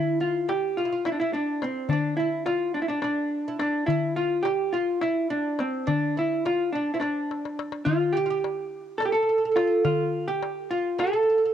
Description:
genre	Turkish makam ensemble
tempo	211 BPM (eighths)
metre	7/8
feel	straight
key	D makam nihavent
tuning	A4 = 441 Hz
part	vintage hollow-body jazz guitar	melody	0.0-11.5 s	C4 to A4	-25 LUFS	equal	cassette tape
part	oud	second line	0.0-11.5 s	C4 to A4	-29 LUFS	right 4 dB	cassette tape
part	darbuka	percussion	0.5-11.1 s	none	-30 LUFS	left 6 dB	none
room	light reverb, small room ambience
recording	home recording on cassette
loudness	-23 LUFS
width	side -9 dB against mid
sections	0.0-11.5 A section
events	drum fill 7.3-7.9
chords	none

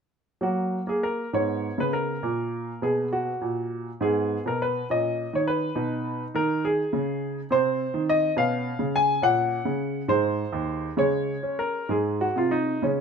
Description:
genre	classical, baroque-style suite movement for grand piano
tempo	68 BPM (dotted quarters)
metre	6/8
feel	rubato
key	F# major, Db major from 7.5 s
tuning	A4 = 440 Hz
part	clear baby grand piano	solo	0.4-13.0 s	Eb2 to Ab5	-23 LUFS	equal	none
room	moderate stone room reverb, RT60 0.9 s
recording	none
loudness	-23 LUFS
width	side -6 dB against mid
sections	0.4-13.0 A section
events	none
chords	0.4 F#; 1.3 C#5/G#; 2.2 F#/A#; 4.0 G#m; 4.9 D#5/A#; 5.8 G#m/B; 7.5 Cm; 8.4 Db7/Cb; 9.2 Gb/Bb; 10.1 Ab; 11.0 Db5; 11.9 Ab

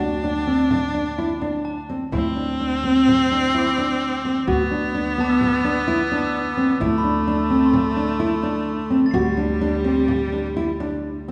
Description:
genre	contemporary instrumental, chamber music in an uneven meter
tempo	127 BPM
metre	5/4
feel	straight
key	unclear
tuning	A4 = 443 Hz
part	clear viola	second line	0.0-11.3 s	G3 to D4	-25 LUFS	equal	none
part	nylon-string guitar	arpeggios	0.0-11.3 s	B3 to F#4	-24 LUFS	equal	none
part	upright bass	bass	0.0-11.3 s	D2	-31 LUFS	equal	none
part	frame drum	percussion	0.0-11.3 s	none	-36 LUFS	equal	none
part	glockenspiel with hard plastic mallets	texture	1.6-9.4 s	A5 to C7	-34 LUFS	equal	none
room	wet recital hall reverb, RT60 1.7 s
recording	recorded in a church or concert hall, nothing above 10.7 kHz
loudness	-21 LUFS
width	mono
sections	0.0-11.3 A section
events	none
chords	0.0 D7(no3); 4.5 Dsus2; 9.1 D7(no3)

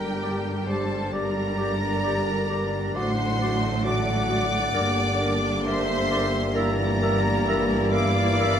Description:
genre	classical, slow romantic movement for symphony orchestra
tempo	66 BPM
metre	4/4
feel	rubato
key	unclear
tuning	A4 = 439 Hz
part	rich symphonic violin section	melody	0.0-8.6 s	G5 to D6	-30 LUFS	equal	none
part	concert flute	second line	0.0-8.6 s	Bb4 to F#5	-31 LUFS	left 2 dB	none
part	warm symphonic violin section	second line	0.0-8.6 s	G4 to D5	-31 LUFS	left 1 dB	none
part	rich symphonic viola section	accompaniment	0.0-8.6 s	F#3 to E4	-32 LUFS	equal	none
part	dark French horn section	sustained chords	0.0-8.6 s	D4 to G4	-32 LUFS	left 5 dB	none
part	warm trombone section	sustained chords	0.0-8.6 s	D3 to Bb3	-31 LUFS	right 4 dB	none
part	bright symphonic double bass section	bass	0.0-8.6 s	G1 to A1	-30 LUFS	right 2 dB	none
part	rich symphonic cello section	bass	0.0-8.6 s	G2 to A2	-30 LUFS	right 1 dB	none
part	warm clarinet	second line	0.2-8.6 s	F#4 to Bb4	-34 LUFS	left 2 dB	none
part	warm oboe	second line	0.2-8.6 s	D5 to E5	-36 LUFS	right 1 dB	none
room	moderate recital hall reverb, RT60 1.7 s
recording	close, detailed microphones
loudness	-22 LUFS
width	side -8 dB against mid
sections	0.0-8.6 A section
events	none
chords	0.0 Gm; 3.0 D7/A; 4.7 Gm; 6.6 Em7b5/G

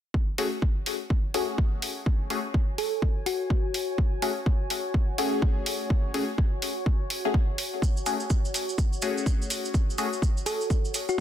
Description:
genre	bass house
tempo	125 BPM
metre	4/4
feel	swing 61% on 16ths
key	F# minor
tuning	A4 = 442 Hz
part	electronic kick drum	drums	0.1-11.2 s	none	-24 LUFS	equal	none
part	warbly tape-like pad	texture	1.0-11.2 s	F#4 to G#5	-37 LUFS	left 1 dB	chorus, built-in reverb, sidechain pumping
part	band-passed chord stab	stabs	0.4-10.1 s	A3 to G#4	-30 LUFS	left 4 dB	phaser, sidechain pumping, ping-pong delay
part	electronic hi-hat	drums	0.4-11.1 s	none	-33 LUFS	equal	none
part	thumb-piano-like synth pluck	melody	2.8-3.9, 10.5-11.2 s	F#4 to A4	-30 LUFS	left 1 dB	chorus, ping-pong delay
part	cabasa	percussion	7.8-11.2 s	none	-35 LUFS	right 4 dB	none
room	little or no reverb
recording	dense, heavily limited modern master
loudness	-24 LUFS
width	side -11 dB against mid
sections	0.1-11.2 A section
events	fade-in on ambient pad 0.1-11.2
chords	0.1 F#madd9

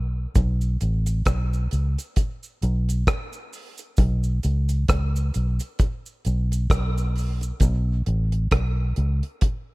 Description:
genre	dub reggae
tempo	66 BPM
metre	4/4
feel	swing 58% on 16ths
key	unclear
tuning	A4 = 440 Hz
part	vintage muted fingered electric bass	bass	0.0-9.2 s	A1 to C#2	-22 LUFS	equal	none
part	deep reggae drum kit	drums	0.4-9.7 s	hi-hat, kick drum, rim click	-22 LUFS	equal	none
part	cabasa	percussion	0.4-7.9 s	none	-42 LUFS	right 4 dB	none
room	small room reverb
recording	echo-heavy mix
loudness	-21 LUFS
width	side -23 dB against mid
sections	0.0-9.7 A section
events	break 0.0-0.4; part muted 7.6-9.7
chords	none

